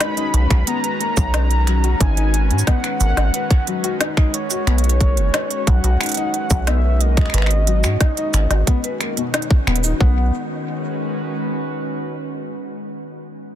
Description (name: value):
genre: IDM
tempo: 90 BPM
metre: 4/4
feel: straight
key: B major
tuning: A4 = 440 Hz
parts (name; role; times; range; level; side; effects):
- warm velvety synth lead; melody; 0.0-10.3 s; C#5 to B5; -26 LUFS; equal; chorus, cassette tape, ping-pong delay
- warbly tape-like pad; sustained chords; 0.0-12.6 s; D#3 to B4; -27 LUFS; equal; chorus, built-in reverb
- felt-muted upright piano; arpeggios; 0.0-10.3 s; B2 to B4; -27 LUFS; left 6 dB; ping-pong delay
- organic electronic drum kit; drums; 0.0-10.0 s; cabasa, finger snaps, hi-hat, snare drum; -24 LUFS; right 1 dB; overdrive, soft clipping on snare
- deep acid bass; bass; 0.3-10.3 s; D#1 to G#2; -17 LUFS; equal; none
- electronic kick drum; drums; 0.5-10.1 s; none; -15 LUFS; equal; overdrive
room: digital ambience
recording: dense, heavily limited modern master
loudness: -16 LUFS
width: side -11 dB against mid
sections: 0.0-10.0 A section; 10.0-12.7 B section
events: band accent 9.3-9.7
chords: 0.0 Bsus2; 2.0 G#m7; 4.7 Bsus2; 7.3 G#m7; 10.0 B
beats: 0.01 0.67 1.34 | 2.00 2.67 3.34 4.00 | 4.67 5.34 6.00 6.67 | 7.34 8.01 8.67 9.34 | 10.01 10.67 11.34 12.01